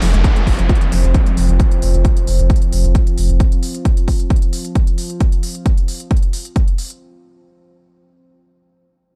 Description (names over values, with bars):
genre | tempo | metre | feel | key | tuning
driving peak-time techno | 133 BPM | 4/4 | straight | unclear | A4 = 441 Hz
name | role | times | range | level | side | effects
warbly dusty pluck | riff | 0.0-1.6 s | Eb3 to F4 | -27 LUFS | equal | chorus, tube saturation, sidechain pumping, tape echo
saturated sub bass | bass | 0.0-3.4 s | F1 | -16 LUFS | equal | overdrive, sidechain pumping, low-pass filter
analog drone | drone | 0.4-5.3 s | F3 to C4 | -29 LUFS | equal | chorus, sidechain pumping
electronic hi-hat | drums | 0.0-7.0 s | none | -33 LUFS | equal | overdrive, sidechain pumping on hats, studio ambience, sidechain pumping on cymbals
downlifter | sound effects | 0.0-3.4 s | none | -29 LUFS | equal | none
electronic kick drum | drums | 0.2-6.7 s | none | -16 LUFS | equal | overdrive, studio ambience
room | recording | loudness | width
little or no reverb | dry, gritty hardware recording, transformer saturation | -16 LUFS | mono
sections
0.0-7.0 A section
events
filter sweep on synth arpeggio sound 0.0-1.6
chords
0.0 F5